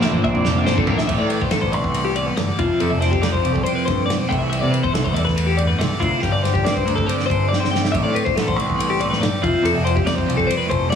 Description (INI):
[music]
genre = math rock and midwest emo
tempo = 140 BPM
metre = 4/4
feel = straight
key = unclear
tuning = A4 = 437 Hz
[part]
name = twelve-string electric guitar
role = accompaniment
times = 0.0-11.0 s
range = E2 to G4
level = -24 LUFS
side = right 6 dB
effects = spring reverb
[part]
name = twelve-string electric guitar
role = arpeggios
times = 0.0-11.0 s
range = F4 to G5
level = -22 LUFS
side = left 7 dB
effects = analog delay
[part]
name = crunchy overdriven guitar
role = riff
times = 0.0-1.1 s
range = Bb2 to D4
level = -21 LUFS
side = left 1 dB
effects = none
[part]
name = growling picked electric bass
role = bass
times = 0.0-10.9 s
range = F1 to C3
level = -22 LUFS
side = equal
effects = overdrive
[part]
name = loose indie drum kit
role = drums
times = 0.0-11.0 s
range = crash cymbal, kick drum, ride cymbal, snare drum, toms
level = -24 LUFS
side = equal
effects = none
[sound]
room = light reverb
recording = heavily compressed radio sound, multiband compression, small room ambience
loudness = -17 LUFS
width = side -8 dB against mid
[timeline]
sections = 0.0-1.1 A section; 1.1-11.0 B section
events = drum fill 0.0-1.1, 7.5-7.9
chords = 0.0 Bbmaj9; 1.1 Am11; 2.6 Fmaj9; 4.3 Cmaj13; 6.2 G7sus4; 7.9 Am11; 9.4 Fmaj9